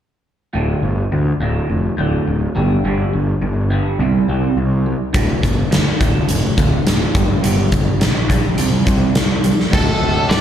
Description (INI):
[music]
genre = quiet-loud alternative rock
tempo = 104 BPM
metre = 4/4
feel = straight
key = unclear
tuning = A4 = 439 Hz
[part]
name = electric guitar through a small old amp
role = arpeggios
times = 0.5-10.4 s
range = D2 to C4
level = -21 LUFS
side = right 2 dB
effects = phaser, slapback echo
[part]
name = fuzz picked electric bass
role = bass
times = 0.6-10.4 s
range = D1 to D2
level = -18 LUFS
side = equal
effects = overdrive
[part]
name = huge arena drum kit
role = drums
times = 5.1-10.4 s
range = crash cymbal, hi-hat, kick drum, snare drum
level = -16 LUFS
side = left 1 dB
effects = none
[part]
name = octave-fuzz lead guitar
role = melody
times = 9.7-10.4 s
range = A4 to D5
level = -18 LUFS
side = equal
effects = distortion, plate reverb, slapback echo
[sound]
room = light reverb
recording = live gig heard through the venue's PA, recital hall reverb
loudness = -14 LUFS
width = side -10 dB against mid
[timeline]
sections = 0.5-9.7 A section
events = none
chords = 0.5 D5; 2.6 G5; 4.0 C5; 5.1 D5; 7.2 G5; 8.6 C5; 9.7 D5